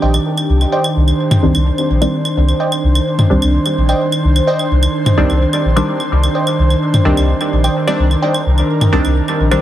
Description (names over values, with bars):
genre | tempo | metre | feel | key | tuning
dub techno | 128 BPM | 4/4 | straight | C minor | A4 = 441 Hz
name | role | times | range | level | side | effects
airy breathy pad | sustained chords | 0.0-9.6 s | Eb3 to C5 | -17 LUFS | right 1 dB | chorus
wavetable chord stab | riff | 0.0-8.4 s | C5 to G5 | -22 LUFS | right 1 dB | cassette tape, dub echo
soft dub sub bass | bass | 0.0-9.6 s | Bb1 to C2 | -13 LUFS | equal | none
electronic claves and toms | percussion | 0.1-9.6 s | none | -19 LUFS | equal | overdrive, dub echo
filtered dub chord stab | stabs | 1.4-9.6 s | Eb3 to D4 | -18 LUFS | equal | chorus, phaser, dub echo
room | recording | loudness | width
light reverb, digital ambience | heavily compressed radio sound | -12 LUFS | side -12 dB against mid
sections
0.7-9.6 A section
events
none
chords
0.0 Cmadd9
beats
0.26 | 0.72 1.19 1.66 2.13 | 2.60 3.07 3.54 4.00 | 4.47 4.94 5.41 5.88 | 6.35 6.82 7.29 7.75 | 8.22 8.69 9.16